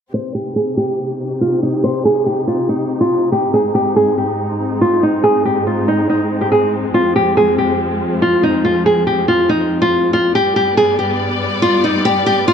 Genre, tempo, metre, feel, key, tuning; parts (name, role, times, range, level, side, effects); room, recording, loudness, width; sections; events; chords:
hip hop; 141 BPM; 4/4; half-time; C harmonic minor; A4 = 441 Hz
nylon-string guitar; melody; 0.1-12.5 s; Eb4 to C5; -14 LUFS; equal; low-pass filter, ping-pong delay
warm studio string section; sustained chords; 0.1-12.5 s; F2 to D5; -20 LUFS; left 1 dB; low-pass filter
moderate recital hall reverb, RT60 1.6 s, small room ambience; -13 LUFS; side -7 dB against mid
0.1-12.5 A section
filter sweep 0.1-12.5
0.1 Cm; 3.5 Ab; 6.9 Fm; 10.3 G